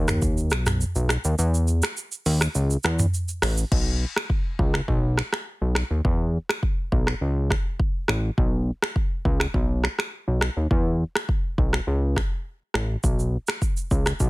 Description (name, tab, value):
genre	afrobeats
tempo	103 BPM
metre	4/4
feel	straight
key	unclear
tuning	A4 = 440 Hz
part	fat analog bass	bass	0.0-14.3 s	A1 to E2	-23 LUFS	equal	none
part	afro-pop drum kit	drums	0.1-14.3 s	crash cymbal, finger snaps, hi-hat, kick drum, rim click, shaker, toms	-24 LUFS	equal	overdrive, soft clipping on snare
room	little or no reverb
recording	dense, heavily limited modern master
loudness	-22 LUFS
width	side -21 dB against mid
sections	0.0-3.7 A section; 3.7-14.3 B section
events	kick muted 1.4-3.7; hi-hats muted 3.7-13.0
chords	none